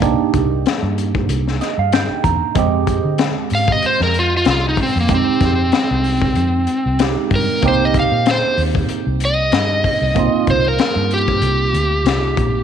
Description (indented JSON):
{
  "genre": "straight-eighth soul blues",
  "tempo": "95 BPM",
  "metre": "4/4",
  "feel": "swing 55% on 16ths",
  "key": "C minor",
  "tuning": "A4 = 440 Hz",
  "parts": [
    { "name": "barky tine electric piano", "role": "accompaniment", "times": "0.0-12.6 s", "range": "Ab3 to Bb5", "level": "-21 LUFS", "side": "right 13 dB", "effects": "phaser" },
    { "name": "vintage muted fingered electric bass", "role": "bass", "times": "0.0-12.6 s", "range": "Bb1 to D3", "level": "-20 LUFS", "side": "equal", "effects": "none" },
    { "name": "crunchy breakbeat drum kit", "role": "drums", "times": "0.0-12.5 s", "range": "hi-hat, kick drum, snare drum", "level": "-20 LUFS", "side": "left 5 dB", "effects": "none" },
    { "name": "overdriven slide guitar", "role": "melody", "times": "3.5-12.6 s", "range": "Bb3 to F5", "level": "-17 LUFS", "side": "equal", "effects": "slapback echo" }
  ],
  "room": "light reverb, studio ambience",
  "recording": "1960s-style stereo",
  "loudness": "-14 LUFS",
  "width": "side -8 dB against mid",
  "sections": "0.0-12.6 A section",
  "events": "electric slide guitar solo 0.0-12.6; tine electric piano fill 1.3-2.6",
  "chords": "0.0 Cm7; 2.6 Fm7; 7.6 Cm7"
}